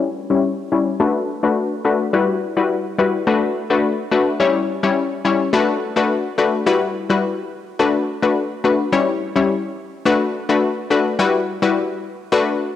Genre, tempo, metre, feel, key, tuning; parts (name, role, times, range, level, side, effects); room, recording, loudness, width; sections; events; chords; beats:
dancehall; 106 BPM; 4/4; straight; B minor; A4 = 439 Hz
analog pluck; solo; 0.0-12.5 s; G3 to C#5; -16 LUFS; left 4 dB; chorus, low-pass filter, cassette tape
moderate lush hall reverb, RT60 2.4 s; home recording on cassette; -16 LUFS; side -11 dB against mid
0.0-6.7 A section; 6.7-12.8 B section
filter sweep on synth pluck 0.0-6.7
0.0 C#dim; 1.0 Bm7; 2.1 Emadd9; 3.3 Bm7; 4.4 C#dim; 5.5 Bm7; 6.7 Emadd9; 7.8 Bm7; 8.9 C#dim; 10.1 Bm7; 11.2 Emadd9
0.44 1.00 1.57 | 2.13 2.70 3.27 3.83 | 4.40 4.96 5.53 6.10 | 6.66 7.23 7.79 8.36 | 8.93 9.49 10.06 10.62 | 11.19 11.76 12.32